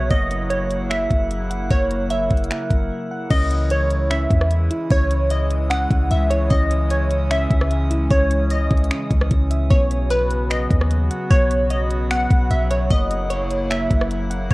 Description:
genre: hip hop, atmospheric cloud-rap.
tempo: 150 BPM.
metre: 4/4.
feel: half-time.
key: C# dorian.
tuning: A4 = 438 Hz.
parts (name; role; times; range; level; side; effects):
glassy wavetable pluck; melody; 0.0-14.5 s; B4 to F#5; -23 LUFS; right 1 dB; chorus, cassette tape, tape echo.
hollow soft pad; sustained chords; 0.0-14.5 s; C#3 to F#4; -28 LUFS; equal; chorus, sidechain pumping, cassette tape.
soft electric-piano-like synth keys; arpeggios; 0.0-14.5 s; A#3 to F#5; -31 LUFS; equal; chorus, cassette tape, tape echo.
warm 808-style bass; bass; 0.0-14.5 s; F#1 to E2; -21 LUFS; equal; none.
drifting glass-harmonics texture; texture; 0.0-14.5 s; C#4 to D#6; -34 LUFS; equal; chorus, built-in reverb, cassette tape.
trap drum kit; drums; 0.1-14.5 s; crash cymbal, finger snaps, hi-hat, kick drum, rim click; -20 LUFS; equal; cassette tape.
room: digital ambience.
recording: home recording on cassette, faint mains hum.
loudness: -17 LUFS.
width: side -20 dB against mid.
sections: 0.0-3.3 A section; 3.3-14.5 B section.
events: break 2.9-3.3.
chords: 0.1 F#7; 3.3 C#madd9; 9.7 Bsus2; 12.9 F#7.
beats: | 0.11 0.51 0.91 1.31 | 1.71 2.11 2.51 2.91 | 3.31 3.71 4.11 4.51 | 4.91 5.31 5.71 6.11 | 6.51 6.91 7.31 7.71 | 8.11 8.51 8.91 9.31 | 9.71 10.11 10.51 10.91 | 11.31 11.71 12.11 12.51 | 12.91 13.31 13.71 14.11 | 14.51.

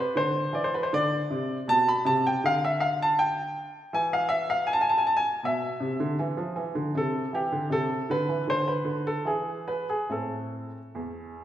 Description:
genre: classical, baroque-style suite movement for grand piano.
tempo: 79 BPM.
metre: 4/4.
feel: rubato.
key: unclear.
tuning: A4 = 444 Hz.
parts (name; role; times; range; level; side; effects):
warm baby grand piano; solo; 0.0-11.4 s; E2 to B5; -24 LUFS; equal; none.
room: wet recital hall reverb, RT60 1.6 s.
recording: recorded in a church or concert hall.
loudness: -24 LUFS.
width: side -11 dB against mid.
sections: 0.0-11.4 A section.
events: none.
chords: 0.0 Cmaj9; 0.9 Bm7; 3.9 E5; 7.0 Cmaj13; 8.5 N.C.; 10.1 Am.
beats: 0.17 | 0.91 1.66 2.41 3.16 | 3.92 4.67 5.42 6.19 | 6.95 7.72 8.48 9.27 | 10.09 10.93.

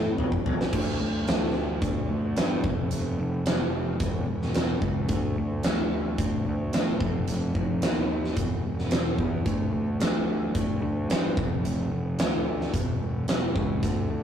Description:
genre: classic rock.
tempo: 110 BPM.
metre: 4/4.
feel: straight.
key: unclear.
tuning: A4 = 440 Hz.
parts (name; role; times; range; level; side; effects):
fuzz picked electric bass; bass; 0.0-14.2 s; E1 to G2; -28 LUFS; equal; overdrive.
huge arena drum kit; drums; 0.2-14.0 s; crash cymbal, hi-hat, kick drum, snare drum, toms; -26 LUFS; equal; none.
room: light reverb.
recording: rough rehearsal-room recording, tube saturation.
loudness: -24 LUFS.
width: side -9 dB against mid.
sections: 0.7-14.2 A section.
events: drum fill 0.0-0.7.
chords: none.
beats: 0.19 | 0.73 1.28 1.83 2.37 | 2.92 3.46 4.01 4.55 | 5.10 5.64 6.19 6.73 | 7.28 7.83 8.37 8.92 | 9.46 10.01 10.55 11.10 | 11.65 12.19 12.74 13.29 | 13.83.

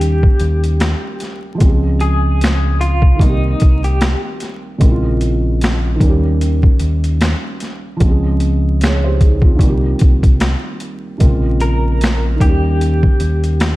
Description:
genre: lo-fi hip hop.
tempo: 75 BPM.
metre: 4/4.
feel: swing 58% on 16ths.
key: unclear.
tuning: A4 = 440 Hz.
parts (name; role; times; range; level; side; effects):
electric guitar through a small old amp; melody; 0.0-4.2, 11.6-13.8 s; Eb4 to Bb4; -23 LUFS; left 1 dB; tremolo, low-pass filter, ping-pong delay.
felt-muted upright piano; accompaniment; 0.0-13.8 s; C3 to Db5; -21 LUFS; right 2 dB; low-pass filter.
deep dub fingered electric bass; bass; 0.0-13.7 s; Bb1 to Eb2; -15 LUFS; equal; none.
boom bap sampler-style drum kit; drums; 0.0-13.8 s; finger snaps, hi-hat, kick drum, snare drum; -14 LUFS; equal; overdrive.
room: light reverb, digital ambience.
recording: vinyl crackle, faint mains hum.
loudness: -12 LUFS.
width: side -18 dB against mid.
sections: 0.0-13.8 A section.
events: none.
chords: 0.0 Eb7; 1.6 Dbmaj7; 3.2 Cm7; 4.8 Bbm9; 6.0 Eb7; 8.0 Dbmaj7; 9.6 Cm7; 11.2 Bbm9; 12.4 Eb7.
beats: 0.01 0.81 | 1.61 2.41 3.21 4.01 | 4.81 5.61 6.41 7.21 | 8.01 8.81 9.61 10.41 | 11.21 12.01 12.81 13.61.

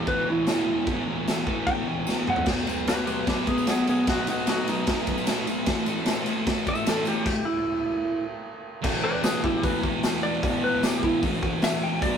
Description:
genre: garage rock duo or trio.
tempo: 151 BPM.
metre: 4/4.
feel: straight.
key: unclear.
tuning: A4 = 441 Hz.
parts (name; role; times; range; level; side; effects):
clean lap steel guitar; melody; 0.0-12.2 s; B3 to G5; -27 LUFS; equal; none.
thick fuzz guitar; riff; 0.0-12.2 s; E2 to B3; -27 LUFS; equal; distortion.
raw garage drum kit; drums; 0.1-12.1 s; crash cymbal, hi-hat, kick drum, ride cymbal, snare drum, toms; -27 LUFS; equal; none.
tambourine; percussion; 0.5-11.7 s; none; -42 LUFS; left 5 dB; none.
room: light reverb.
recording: rough rehearsal-room recording.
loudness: -23 LUFS.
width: side -7 dB against mid.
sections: 0.0-2.5 A section; 2.5-8.9 B section; 8.9-12.2 C section.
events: drum fill 2.1-2.5; stop 7.3-8.9.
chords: 0.0 E5; 2.5 B; 5.7 A5; 8.9 E5.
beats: 0.07 0.48 | 0.88 1.28 1.68 2.08 | 2.48 2.88 3.28 3.68 | 4.08 4.48 4.88 5.27 | 5.67 6.07 6.47 6.87 | 7.27 7.66 8.06 8.46 | 8.86 9.25 9.65 10.04 | 10.44 10.84 11.23 11.63 | 12.03.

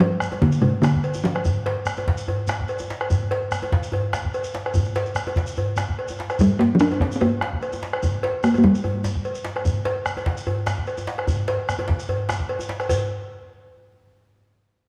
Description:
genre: west african traditional, West African drum ensemble.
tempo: 147 BPM.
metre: 4/4.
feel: straight.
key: Bb major pentatonic.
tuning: A4 = 440 Hz.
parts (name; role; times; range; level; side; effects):
talking drum; melody; 0.0-2.9, 6.4-9.2 s; C3 to D4; -21 LUFS; equal; none.
cowbell; percussion; 0.0-13.1 s; none; -31 LUFS; equal; none.
djembe; percussion; 0.0-13.1 s; none; -31 LUFS; equal; none.
bombo; percussion; 0.2-13.1 s; none; -28 LUFS; equal; none.
shekere; percussion; 0.2-13.1 s; none; -37 LUFS; equal; none.
room: moderate concert hall reverb, RT60 2.0 s.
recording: small room ambience.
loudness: -23 LUFS.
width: mono.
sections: 0.0-12.9 A section; 12.9-14.5 B section.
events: speeding up 0.0-14.5.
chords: none.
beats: 0.21 0.62 1.04 | 1.45 1.87 2.28 2.69 | 3.10 3.52 3.93 4.34 | 4.75 5.16 5.57 5.98 | 6.39 6.80 7.21 7.62 | 8.03 8.43 8.84 9.25 | 9.65 10.06 10.47 10.87 | 11.28 11.68 12.09 12.49 | 12.89.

